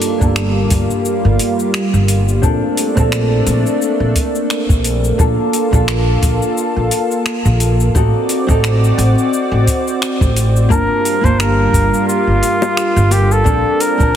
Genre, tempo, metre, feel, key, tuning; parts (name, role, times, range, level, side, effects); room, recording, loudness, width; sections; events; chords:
sunset chillout; 87 BPM; 4/4; swing 56% on 16ths; G minor; A4 = 440 Hz
nylon-string guitar; accompaniment; 0.0-14.2 s; Bb3 to A5; -20 LUFS; moving between left 5 dB and right 4 dB; auto-pan, low-pass filter, tape echo
lush unison pad; sustained chords; 0.0-14.2 s; G3 to D5; -18 LUFS; equal; chorus
deep house drum kit; drums; 0.0-14.1 s; cabasa, finger snaps, hi-hat; -22 LUFS; left 2 dB; overdrive
upright bass; bass; 0.2-14.2 s; G1 to Bb1; -15 LUFS; equal
electronic kick drum; drums; 0.2-14.1 s; -16 LUFS; equal
warm flugelhorn; melody; 10.7-14.2 s; F4 to C5; -16 LUFS; right 1 dB; tape echo
bongos; percussion; 12.6-13.3 s; -22 LUFS; left 5 dB
light reverb, small room ambience; heavily compressed radio sound, multiband compression; -12 LUFS; side -10 dB against mid
0.0-14.2 A section
filter sweep on nylon-string guitar 0.0-14.2
0.0 Gm7; 2.4 Bbmaj9; 5.2 Bbmaj7; 7.9 D7b9/A; 10.7 Gm7; 13.5 Bbmaj9